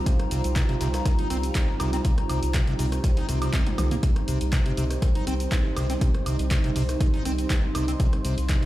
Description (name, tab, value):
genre	acid house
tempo	121 BPM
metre	4/4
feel	straight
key	C minor pentatonic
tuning	A4 = 440 Hz
part	dark analog pad	sustained chords	0.0-8.7 s	G3 to F4	-32 LUFS	equal	chorus, sidechain pumping
part	saturated sub bass	bass	0.0-8.6 s	C2	-28 LUFS	equal	sidechain pumping
part	warbly tape-like pad	texture	0.0-8.7 s	Eb4 to C6	-34 LUFS	right 2 dB	chorus, built-in reverb, sidechain pumping
part	liquid acid bass	riff	0.1-8.7 s	C2 to Eb4	-31 LUFS	equal	tube saturation, wide subtle chorus, sidechain pumping, tape echo
part	breakbeat sampler-style drum kit	drums	0.1-8.6 s	hi-hat, snare drum, tambourine	-44 LUFS	equal	none
part	electronic kick drum	drums	0.1-8.6 s	none	-24 LUFS	equal	overdrive
part	punchy analog drum machine	drums	0.1-8.7 s	handclaps, hi-hat, rim click, shaker, toms, woodblock	-33 LUFS	equal	overdrive
room	light reverb, digital ambience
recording	played on a big sound system in a bare room, large studio reverb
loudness	-22 LUFS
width	side -15 dB against mid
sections	0.0-8.7 A section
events	drum fill 3.5-4.0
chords	0.0 Cm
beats	| 0.06 0.56 1.05 1.55 | 2.05 2.54 3.04 3.53 | 4.03 4.53 5.02 5.52 | 6.01 6.51 7.01 7.50 | 8.00 8.49